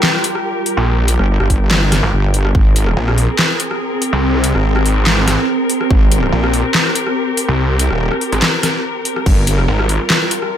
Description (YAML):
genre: heavy wobble dubstep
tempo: 143 BPM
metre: 4/4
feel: half-time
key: unclear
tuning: A4 = 439 Hz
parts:
  - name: warm chamber string section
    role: sustained chords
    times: 0.0-10.6 s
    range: G3 to Bb4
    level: -22 LUFS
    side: left 2 dB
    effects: sidechain pumping, low-pass filter
  - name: dubstep drum kit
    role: drums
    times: 0.0-10.5 s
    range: crash cymbal, handclaps, hi-hat, rim click, snare drum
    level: -17 LUFS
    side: equal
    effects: overdrive
  - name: warbly tape-like pad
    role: texture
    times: 0.0-10.6 s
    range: C4 to G5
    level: -22 LUFS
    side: right 1 dB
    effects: chorus, built-in reverb, sidechain pumping
  - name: snarling distorted saw bass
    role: bass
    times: 0.8-10.0 s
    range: Eb1 to C2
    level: -15 LUFS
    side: equal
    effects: distortion, overdrive
  - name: wobble bass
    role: bass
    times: 1.2-3.0, 5.9-6.3, 9.3-9.7 s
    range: G1 to Ab1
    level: -14 LUFS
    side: equal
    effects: chorus, overdrive
  - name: electronic kick drum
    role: drums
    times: 1.5-2.6, 5.9-6.0, 9.3-9.4 s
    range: none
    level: -13 LUFS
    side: equal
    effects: overdrive
room: light reverb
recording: none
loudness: -12 LUFS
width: side -10 dB against mid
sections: 0.0-10.6 A section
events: none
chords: 0.0 Gm7; 2.5 Abadd9; 9.3 Gm7